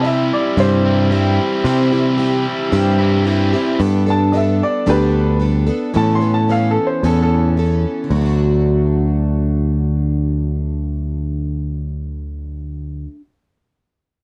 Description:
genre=folk rock and heartland rock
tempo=112 BPM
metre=4/4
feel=straight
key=D major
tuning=A4 = 440 Hz
part: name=clear upright piano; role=second line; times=0.0-7.5 s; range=G4 to C6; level=-22 LUFS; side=equal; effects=none
part: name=picked plugged-in twelve-string acoustic guitar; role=accompaniment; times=0.0-13.3 s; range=A2 to A4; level=-23 LUFS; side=equal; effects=none
part: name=biting overdriven guitar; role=riff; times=0.0-3.8 s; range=C3 to E4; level=-24 LUFS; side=equal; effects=none
part: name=picked electric bass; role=bass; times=0.0-13.1 s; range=D2 to C3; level=-18 LUFS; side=equal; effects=none
room=little or no reverb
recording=dry, close 1970s-style studio recording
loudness=-17 LUFS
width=mono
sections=0.0-8.1 A section; 8.1-12.4 B section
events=upright piano solo 0.0-8.1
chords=0.0 C; 3.8 Gadd9; 5.9 Aadd9; 8.1 D

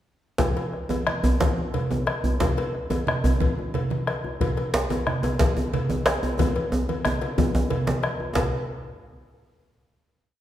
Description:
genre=west african traditional, West African drum ensemble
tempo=121 BPM (dotted quarters)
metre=12/8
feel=straight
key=none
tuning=none
part: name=bombo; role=percussion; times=0.4-8.5 s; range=none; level=-28 LUFS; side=left 1 dB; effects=none
part: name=congas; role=percussion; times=0.4-8.5 s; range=none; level=-29 LUFS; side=right 2 dB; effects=none
part: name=cowbell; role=percussion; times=0.4-8.5 s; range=none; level=-32 LUFS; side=left 4 dB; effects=none
part: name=djembe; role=percussion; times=0.4-8.5 s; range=none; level=-32 LUFS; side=left 3 dB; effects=none
part: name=djembe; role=percussion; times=0.4-8.5 s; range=none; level=-26 LUFS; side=right 1 dB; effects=none
room=wet recital hall reverb, RT60 1.8 s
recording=recorded in a church or concert hall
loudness=-22 LUFS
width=side -12 dB against mid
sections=0.4-8.4 A section; 8.4-10.3 final hit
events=drum fill 6.4-8.4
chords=none

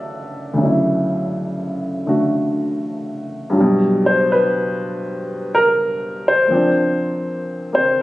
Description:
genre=solo jazz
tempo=81 BPM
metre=4/4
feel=swing 68% on 8ths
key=D major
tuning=A4 = 440 Hz
part: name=warm upright piano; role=solo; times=0.0-8.0 s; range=D2 to F#5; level=-16 LUFS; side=equal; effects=none
room=light reverb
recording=recorded on a phone in the room, studio reverb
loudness=-16 LUFS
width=side -17 dB against mid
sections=0.0-3.5 A section; 3.5-8.0 B section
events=upright piano solo 3.5-8.0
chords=0.0 Dmaj9; 3.5 Gmaj7; 6.5 Bbadd9

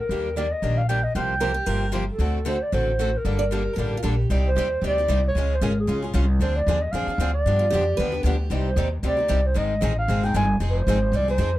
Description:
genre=acoustic string swing (jazz manouche)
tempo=228 BPM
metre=4/4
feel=swing 56% on 8ths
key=G minor, C harmonic minor from 4.3 s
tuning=A4 = 440 Hz
part: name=breathy clarinet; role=melody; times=0.0-11.6 s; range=Ab4 to Ab5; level=-25 LUFS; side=right 1 dB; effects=none
part: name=picked plugged-in acoustic archtop guitar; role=accompaniment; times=0.1-11.5 s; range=C3 to D5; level=-32 LUFS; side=right 5 dB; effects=none
part: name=picked steel-string acoustic guitar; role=accompaniment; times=0.1-11.5 s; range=C3 to D5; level=-31 LUFS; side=left 5 dB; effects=none
part: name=upright bass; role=bass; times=0.1-11.6 s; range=F1 to G2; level=-23 LUFS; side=equal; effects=none
part: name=picked steel-string acoustic guitar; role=second line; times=1.4-4.3, 7.6-8.5 s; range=F4 to D5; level=-30 LUFS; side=right 3 dB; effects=none
room=light reverb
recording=dark, warm production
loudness=-20 LUFS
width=side -15 dB against mid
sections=0.0-4.3 A section; 4.3-11.6 B section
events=none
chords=0.1 Ebmaj7; 1.1 C7sus4; 2.2 D7; 3.2 Gmadd9; 4.3 Cmadd9; 5.4 Db; 6.4 Dm7b5; 7.5 G7; 8.5 Cm; 9.6 Ab; 10.6 Fm7

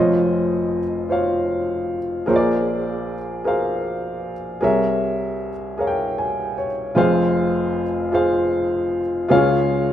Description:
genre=gospel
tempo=51 BPM (dotted quarters)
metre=6/8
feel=straight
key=unclear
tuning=A4 = 441 Hz
part: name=warm upright piano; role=solo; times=0.0-9.9 s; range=F1 to Ab5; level=-18 LUFS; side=equal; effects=none
room=wet plate reverb, RT60 3.2 s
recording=rough home demo mix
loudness=-18 LUFS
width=side -11 dB against mid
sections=0.0-7.0 A section; 7.0-9.9 B section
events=upright piano fill 5.8-7.0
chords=0.0 Dbmaj9/F; 2.3 Bb9; 4.6 C7b9b13; 7.0 Fm; 9.3 Db

